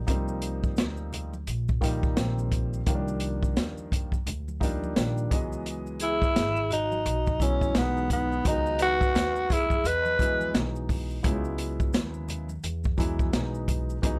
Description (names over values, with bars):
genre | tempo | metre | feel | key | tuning
hip hop, jazz-hop | 86 BPM | 4/4 | swing 60% on 16ths | unclear | A4 = 440 Hz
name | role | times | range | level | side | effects
dark concert grand piano | accompaniment | 0.0-14.2 s | Db3 to Eb5 | -36 LUFS | equal | none
upright bass | bass | 0.0-14.2 s | Ab1 to Fb2 | -35 LUFS | equal | tube saturation
open jazz drum kit | drums | 0.1-14.2 s | hi-hat, kick drum, snare drum | -30 LUFS | equal | none
maracas and congas | percussion | 0.1-14.2 s | none | -47 LUFS | equal | none
growling tenor saxophone | melody | 6.0-10.6 s | Cb4 to Cb5 | -28 LUFS | equal | none
vibraphone with hard mallets | second line | 6.0-10.5 s | Eb4 to Eb5 | -37 LUFS | equal | none
room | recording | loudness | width
little or no reverb | dry, gritty hardware recording | -27 LUFS | mono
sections
0.0-14.2 A section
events
none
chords
0.0 Cm11; 5.3 Dbm11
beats
| 0.08 0.78 1.48 2.17 | 2.87 3.57 4.27 4.96 | 5.66 6.36 7.06 7.75 | 8.45 9.15 9.85 10.54 | 11.24 11.94 12.64 13.34 | 14.03